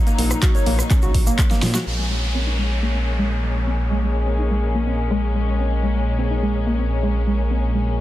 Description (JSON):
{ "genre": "progressive house", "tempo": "125 BPM", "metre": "4/4", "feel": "straight", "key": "Bb minor", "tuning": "A4 = 440 Hz", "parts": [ { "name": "dark studio string section", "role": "sustained chords", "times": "0.0-8.0 s", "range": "Gb3 to Eb4", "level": "-27 LUFS", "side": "left 4 dB", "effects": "sidechain pumping, low-pass filter" }, { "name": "soft round pluck", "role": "arpeggios", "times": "0.1-7.9 s", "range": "Ab3 to Db5", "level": "-26 LUFS", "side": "equal", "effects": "wide subtle chorus, sidechain pumping, dub echo" }, { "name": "big-room dance drum kit", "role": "drums", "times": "0.1-1.8 s", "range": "handclaps, hi-hat, rim click, snare drum", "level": "-27 LUFS", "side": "equal", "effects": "overdrive, small room ambience" }, { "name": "egg shaker", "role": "percussion", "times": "0.1-1.8 s", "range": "none", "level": "-33 LUFS", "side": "right 4 dB", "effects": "none" }, { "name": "dark detuned saw bass", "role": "bass", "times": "0.2-8.0 s", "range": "Bb1 to Bb2", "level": "-21 LUFS", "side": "equal", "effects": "sidechain pumping" }, { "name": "electronic kick drum", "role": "drums", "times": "0.4-1.5 s", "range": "none", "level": "-17 LUFS", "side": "equal", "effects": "overdrive, small room ambience" }, { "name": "downlifter", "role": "sound effects", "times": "1.9-5.7 s", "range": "none", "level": "-30 LUFS", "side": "equal", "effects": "none" } ], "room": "little or no reverb", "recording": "dense, heavily limited modern master", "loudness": "-18 LUFS", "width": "side -14 dB against mid", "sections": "0.0-1.9 A section; 1.9-8.0 B section", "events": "drop 0.0-1.9; drum fill 1.5-1.9; filter sweep on synth pluck 1.9-8.0", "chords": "0.0 Gb/Bb; 1.9 Bbm9" }